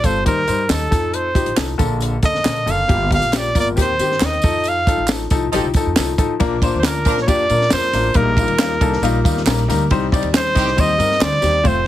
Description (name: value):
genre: uptempo 1960s-style soul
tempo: 137 BPM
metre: 4/4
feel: straight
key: Bb major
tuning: A4 = 439 Hz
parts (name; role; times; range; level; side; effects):
- clear trumpet; melody; 0.0-11.9 s; A4 to F5; -18 LUFS; right 1 dB; none
- warm baby grand piano; accompaniment; 0.0-11.8 s; D3 to Eb5; -21 LUFS; left 5 dB; none
- upright bass; bass; 0.0-11.9 s; F1 to Bb2; -22 LUFS; equal; none
- compact cocktail drum kit; drums; 0.0-11.8 s; hi-hat, kick drum, ride cymbal, snare drum; -20 LUFS; equal; none
- tambourine and handclaps; percussion; 0.0-11.8 s; none; -28 LUFS; right 6 dB; none
- mellow horn section; second line; 5.5-7.2, 10.6-10.7 s; Eb3 to Bb4; -22 LUFS; right 3 dB; none
room: light reverb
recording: heavily compressed radio sound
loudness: -15 LUFS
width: side -13 dB against mid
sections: 0.0-6.4 A section; 6.4-11.9 B section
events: band accent 4.7-6.4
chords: 0.3 Eb6; 0.9 F7; 1.8 Bbmaj7; 2.9 Gm7; 3.8 Eb6; 4.4 F7; 6.4 Bb; 8.2 Eb/Bb; 9.9 Cm